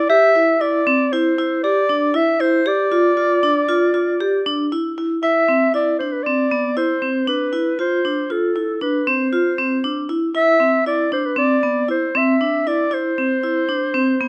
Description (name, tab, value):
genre	contemporary instrumental, contemporary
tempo	117 BPM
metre	5/4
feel	straight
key	unclear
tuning	A4 = 440 Hz
part	mellow clarinet	melody	0.0-14.3 s	A4 to E5	-21 LUFS	equal	none
part	vibraphone with hard mallets	arpeggios	0.0-14.3 s	B3 to G4	-21 LUFS	equal	none
room	light reverb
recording	close, detailed microphones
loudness	-18 LUFS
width	mono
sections	0.0-5.2 A section; 5.2-14.3 B section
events	none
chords	0.1 Cadd9; 2.7 G5; 5.2 Cmaj9; 7.8 Dm7; 10.4 Cadd9